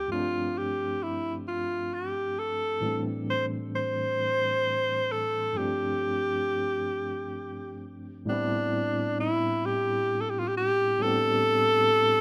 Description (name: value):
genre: R&B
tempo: 44 BPM (dotted quarters)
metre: 6/8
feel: straight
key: A minor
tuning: A4 = 440 Hz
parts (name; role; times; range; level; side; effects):
- clear tenor saxophone; melody; 0.0-12.2 s; D4 to C5; -28 LUFS; equal; plate reverb
- overdriven tine electric piano; accompaniment; 0.0-12.2 s; G2 to G4; -35 LUFS; equal; medium tremolo
room: moderate small room ambience, RT60 0.5 s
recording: rough home demo mix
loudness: -28 LUFS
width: mono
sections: 0.0-8.3 A section; 8.3-12.2 B section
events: none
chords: 0.1 G7sus4; 2.8 Am7; 5.6 G7sus4; 8.3 Am11